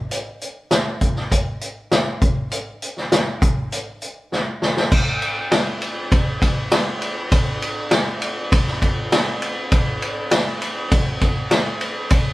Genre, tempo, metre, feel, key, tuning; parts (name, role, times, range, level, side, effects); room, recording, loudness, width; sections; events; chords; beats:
rock; 100 BPM; 4/4; straight
vintage drum kit; drums; 0.1-12.3 s; crash cymbal, hi-hat, kick drum, ride cymbal, snare drum; -18 LUFS; equal
light reverb; band playing live in one room, lossy compression artefacts; -18 LUFS; side -18 dB against mid
0.0-4.9 A section; 4.9-12.3 B section
drum fill 4.3-4.9
| 0.11 0.71 1.32 1.92 | 2.52 3.12 3.73 4.33 | 4.93 5.53 6.13 6.73 | 7.33 7.93 8.53 9.12 | 9.72 10.32 10.92 11.52 | 12.12